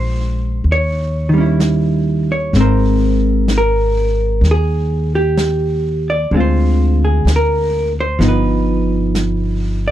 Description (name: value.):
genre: jazz ballad.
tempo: 64 BPM.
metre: 4/4.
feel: swing 69% on 8ths.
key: unclear.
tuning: A4 = 440 Hz.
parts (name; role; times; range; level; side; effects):
vintage hollow-body jazz guitar; accompaniment; 0.0-9.9 s; D3 to D5; -16 LUFS; right 1 dB; none.
upright bass; bass; 0.0-9.9 s; G1 to Eb2; -16 LUFS; equal; none.
vintage brush drum kit; drums; 0.7-9.9 s; brushed snare drum, hi-hat, snare drum; -25 LUFS; equal; none.
room: little or no reverb.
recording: dry, close 1970s-style studio recording.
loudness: -13 LUFS.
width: side -12 dB against mid.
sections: 0.0-9.9 A section.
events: none.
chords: 0.0 Bbm7; 0.7 Eb7b9; 2.5 Abmaj9; 6.3 Dm7b5; 8.2 G7b13.